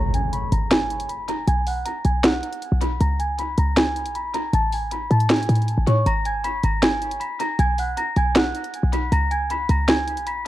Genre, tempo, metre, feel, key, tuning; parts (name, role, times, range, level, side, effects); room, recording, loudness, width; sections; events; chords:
hip hop, trap; 157 BPM; 4/4; half-time; G# minor; A4 = 438 Hz
worn celesta; melody; 0.0-10.4 s; C#5 to B6; -25 LUFS; right 1 dB; low-pass filter, analog delay
short 808-style bass; bass; 0.0-10.5 s; G#1 to A2; -22 LUFS; equal
impact; sound effects; 0.0-1.5 s; -28 LUFS; equal
trap drum kit; drums; 0.1-10.4 s; hi-hat, snare drum; -23 LUFS; equal; overdrive, analog delay
small room ambience; echo-heavy mix, cassette tape; -19 LUFS; side -15 dB against mid
0.0-10.5 A section
impact 0.0-1.5; filter sweep on celesta 0.0-6.1
0.0 G#m; 1.5 B5; 3.0 C#5; 4.5 Amaj7; 6.1 G#m; 7.6 B5; 9.1 C#5